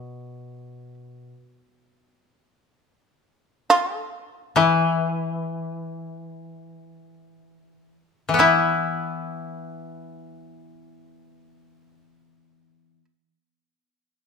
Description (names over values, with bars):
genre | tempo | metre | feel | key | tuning
japanese traditional, Japanese chamber music | free time | none | none | unclear | A4 = 440 Hz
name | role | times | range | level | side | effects
shamisen | melody | 0.0-13.0 s | E4 to B4 | -21 LUFS | right 2 dB | none
koto | accompaniment | 0.0-13.1 s | B2 to E4 | -22 LUFS | left 4 dB | none
room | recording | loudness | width
moderate recital hall reverb, RT60 1.6 s | minimal, uncompressed stereo recording | -20 LUFS | side -5 dB against mid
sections
0.0-8.4 A section; 8.4-13.2 B section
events
slowing down 0.0-8.4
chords
none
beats
free time